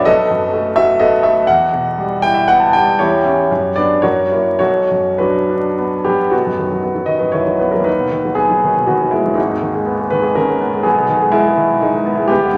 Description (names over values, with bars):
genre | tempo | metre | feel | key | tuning
classical, romantic character piece for solo piano | 100-128 BPM | 3/4 | rubato | B minor, B major from 6.3 s | A4 = 442 Hz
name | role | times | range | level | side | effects
clear grand piano | solo | 0.0-12.6 s | G1 to A5 | -15 LUFS | equal | none
room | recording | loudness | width
wet recital hall reverb, RT60 1.8 s | vinyl crackle | -15 LUFS | mono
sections
0.0-6.3 A section; 6.3-12.6 B section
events
none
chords
0.1 B7; 1.5 Em; 3.0 C#dim/E; 3.5 Bm/F#; 4.0 F#7; 4.6 Bm; 6.3 B; 7.9 B/D#; 9.4 G#m; 10.9 G#m/B